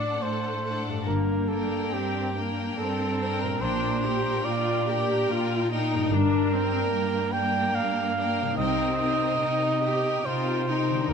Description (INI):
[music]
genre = classical, slow romantic movement for symphony orchestra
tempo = 72 BPM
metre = 3/4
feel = rubato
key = G minor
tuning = A4 = 440 Hz
[part]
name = rich studio violin section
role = melody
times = 0.0-11.1 s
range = F#5 to G5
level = -36 LUFS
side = left 5 dB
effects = none
[part]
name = clear studio violin section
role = second line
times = 0.0-11.1 s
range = D4 to Bb4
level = -33 LUFS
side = left 5 dB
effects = none
[part]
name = dark cor anglais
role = second line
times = 0.0-11.1 s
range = G4 to G5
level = -29 LUFS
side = right 3 dB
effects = none
[part]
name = rich studio viola section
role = accompaniment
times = 0.0-11.1 s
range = A3 to G4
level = -30 LUFS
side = left 1 dB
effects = none
[part]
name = concert harp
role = arpeggios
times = 0.0-11.1 s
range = G2 to Bb4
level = -33 LUFS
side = left 8 dB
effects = none
[part]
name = warm symphonic cello section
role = bass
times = 0.0-11.1 s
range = G2 to D3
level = -31 LUFS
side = right 4 dB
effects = none
[part]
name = rich studio double bass section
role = bass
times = 1.1-11.1 s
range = G1 to D2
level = -31 LUFS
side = right 3 dB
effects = none
[sound]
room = moderate scoring stage reverb, RT60 1.6 s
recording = close, detailed microphones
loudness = -23 LUFS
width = side -6 dB against mid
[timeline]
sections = 0.0-11.1 A section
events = none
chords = 0.0 D7/A; 1.1 Gm; 3.6 Gm/Bb; 6.1 Gm; 8.6 Cm7